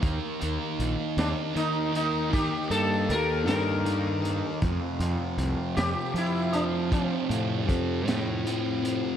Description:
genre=psychedelic rock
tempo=52 BPM (dotted quarters)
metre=6/8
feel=straight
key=unclear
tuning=A4 = 440 Hz
part: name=fuzz guitar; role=riff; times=0.0-9.2 s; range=F2 to Eb4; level=-29 LUFS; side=right 1 dB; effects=distortion, phaser
part: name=fuzz fingered electric bass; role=bass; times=0.0-9.0 s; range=Bb1 to F3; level=-29 LUFS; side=equal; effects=overdrive
part: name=crunchy breakbeat drum kit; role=drums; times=0.0-9.0 s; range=hi-hat, kick drum, snare drum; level=-31 LUFS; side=equal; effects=none
part: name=sitar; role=melody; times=1.2-8.0 s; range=C4 to Bb4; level=-30 LUFS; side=left 1 dB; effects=analog delay
room=moderate plate reverb, RT60 2.2 s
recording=dreamy mix soaked in reverb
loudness=-25 LUFS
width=side -9 dB against mid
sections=0.0-9.2 A section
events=none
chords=0.0 Eb; 4.6 F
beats=| 0.02 1.17 | 2.32 3.47 | 4.62 5.78 | 6.93 8.08

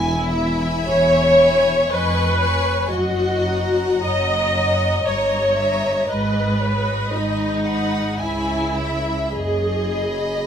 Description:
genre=classical, slow romantic movement for string orchestra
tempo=51-60 BPM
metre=3/4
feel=rubato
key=unclear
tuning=A4 = 439 Hz
part: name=dark studio violin section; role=melody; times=0.0-10.5 s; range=C#5 to G#5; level=-27 LUFS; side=left 2 dB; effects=none
part: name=rich studio viola section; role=accompaniment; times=0.0-10.5 s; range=D#4 to D#5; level=-19 LUFS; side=equal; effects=none
part: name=dark studio double bass section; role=bass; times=0.0-10.4 s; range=E1 to C#2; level=-26 LUFS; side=equal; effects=none
part: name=warm studio cello section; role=bass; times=0.0-10.4 s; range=E2 to C#3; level=-26 LUFS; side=right 1 dB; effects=none
part: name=dark studio violin section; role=second line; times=0.3-10.5 s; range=D#5 to C#6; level=-29 LUFS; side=left 1 dB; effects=none
room=light reverb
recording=none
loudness=-17 LUFS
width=side -8 dB against mid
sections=0.0-10.5 A section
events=none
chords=0.0 C#m7/E; 1.9 C#7/E#; 2.9 F#; 5.1 D#7/G; 6.1 G#m; 8.2 C#m7; 9.3 B/F#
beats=0.88 1.90 | 2.90 4.02 5.06 | 6.09 7.12 8.19 | 9.32

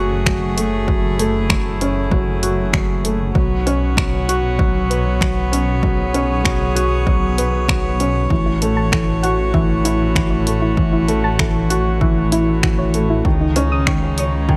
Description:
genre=piano and strings electronica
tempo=97 BPM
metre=4/4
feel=straight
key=F# dorian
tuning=A4 = 440 Hz
part: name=rich string quartet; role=sustained chords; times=0.0-14.6 s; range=C#3 to C#5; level=-26 LUFS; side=equal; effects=none
part: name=felt-muted upright piano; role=riff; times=0.0-14.6 s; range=D#3 to C#5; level=-22 LUFS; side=equal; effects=digital delay
part: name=dark detuned saw bass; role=bass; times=0.0-14.6 s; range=F#1 to C#2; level=-23 LUFS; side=equal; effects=sidechain pumping
part: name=deep house drum kit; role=drums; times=0.3-14.3 s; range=finger snaps, hi-hat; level=-24 LUFS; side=equal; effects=overdrive
part: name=electronic kick drum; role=drums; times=0.3-14.6 s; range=none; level=-22 LUFS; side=equal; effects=overdrive
part: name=soft round pluck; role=arpeggios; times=8.5-14.6 s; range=D#4 to D#6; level=-28 LUFS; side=equal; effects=chorus, sidechain pumping, digital delay
room=light reverb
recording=none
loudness=-17 LUFS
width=mono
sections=0.0-14.6 A section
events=none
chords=0.0 F#madd9; 3.4 Bsus2; 8.3 A6; 13.3 C#sus2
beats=0.27 | 0.88 1.50 2.12 2.74 | 3.36 3.98 4.59 5.21 | 5.83 6.45 7.07 7.69 | 8.31 8.93 9.54 10.16 | 10.78 11.40 12.02 12.64 | 13.26 13.87 14.49

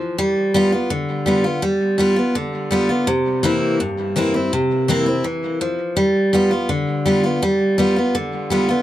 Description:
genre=rock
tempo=166 BPM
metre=4/4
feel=straight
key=G mixolydian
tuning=A4 = 439 Hz
part: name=picked steel-string acoustic guitar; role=solo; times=0.0-8.8 s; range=G2 to F4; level=-16 LUFS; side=equal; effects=analog delay
room=light reverb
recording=none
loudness=-16 LUFS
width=side -13 dB against mid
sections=0.0-8.8 A section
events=none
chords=0.2 G7; 3.1 C7; 6.0 G7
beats=| 0.18 0.54 0.90 1.26 | 1.62 1.99 2.35 2.71 | 3.07 3.44 3.80 4.16 | 4.52 4.89 5.25 5.61 | 5.97 6.33 6.70 7.06 | 7.42 7.78 8.15 8.51

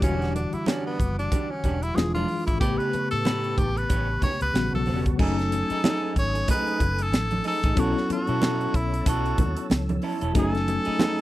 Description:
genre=lush 1970s-style soul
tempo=93 BPM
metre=4/4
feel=swing 58% on 16ths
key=F# dorian from 5.2 s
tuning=A4 = 440 Hz
part: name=bright tenor saxophone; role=melody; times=0.0-11.2 s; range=B3 to C#5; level=-29 LUFS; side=left 1 dB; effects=none
part: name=tine electric piano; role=accompaniment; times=0.0-11.2 s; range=C#3 to G#5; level=-29 LUFS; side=left 2 dB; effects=overdrive, fast stereo tremolo
part: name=mellow tonewheel organ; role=sustained chords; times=0.0-11.2 s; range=G3 to E6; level=-40 LUFS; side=equal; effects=chorus vibrato, slow rotary speaker
part: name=electric guitar through a small old amp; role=riff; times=0.0-11.2 s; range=G3 to C#5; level=-32 LUFS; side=right 5 dB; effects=none
part: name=vintage muted fingered electric bass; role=bass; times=0.0-10.9 s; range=E1 to B2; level=-28 LUFS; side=equal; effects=none
part: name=tight funk drum kit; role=drums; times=0.0-11.2 s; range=crash cymbal, hi-hat, kick drum, snare drum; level=-25 LUFS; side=equal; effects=none
part: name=congas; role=percussion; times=0.0-11.2 s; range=none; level=-31 LUFS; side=right 4 dB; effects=none
room=little or no reverb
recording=dry, close 1970s-style studio recording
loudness=-22 LUFS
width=side -16 dB against mid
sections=0.0-5.2 A section; 5.2-11.2 B section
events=tenor saxophone solo 0.0-5.2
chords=0.0 Em9; 2.0 E7b9; 2.6 A9; 4.5 A13; 5.2 F#m69; 7.8 B9sus4; 10.4 F#m69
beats=| 0.02 0.67 1.31 1.96 | 2.61 3.25 3.90 4.54 | 5.19 5.84 6.48 7.13 | 7.77 8.42 9.06 9.71 | 10.35 11.00

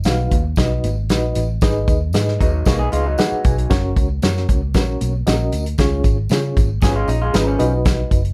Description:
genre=uptempo 1960s-style soul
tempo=115 BPM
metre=4/4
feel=straight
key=F# major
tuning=A4 = 440 Hz
part: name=vintage muted fingered electric bass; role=bass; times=0.0-8.3 s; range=F#1 to C#3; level=-23 LUFS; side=equal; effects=none
part: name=tambourine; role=percussion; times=0.0-8.2 s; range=none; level=-43 LUFS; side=equal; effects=none
part: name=reed electric piano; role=accompaniment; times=0.1-8.2 s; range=C#4 to G#5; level=-25 LUFS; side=equal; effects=fast tremolo
part: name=natural country drum kit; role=drums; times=0.1-8.3 s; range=hi-hat, kick drum, snare drum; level=-21 LUFS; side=equal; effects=none
part: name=congas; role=percussion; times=0.1-8.2 s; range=none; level=-36 LUFS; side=equal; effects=none
part: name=electric guitar through a small old amp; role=riff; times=2.4-3.7, 6.8-7.7 s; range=E#3 to G#4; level=-26 LUFS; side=equal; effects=none
room=light reverb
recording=dark, warm production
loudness=-18 LUFS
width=mono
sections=0.0-8.3 A section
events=reed electric piano fill 2.7-3.7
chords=0.0 B; 1.6 G#m; 3.7 F#; 5.8 C#; 7.6 B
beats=0.06 0.58 1.10 | 1.62 2.15 2.67 3.19 | 3.71 4.23 4.75 5.27 | 5.79 6.30 6.82 7.34 | 7.86

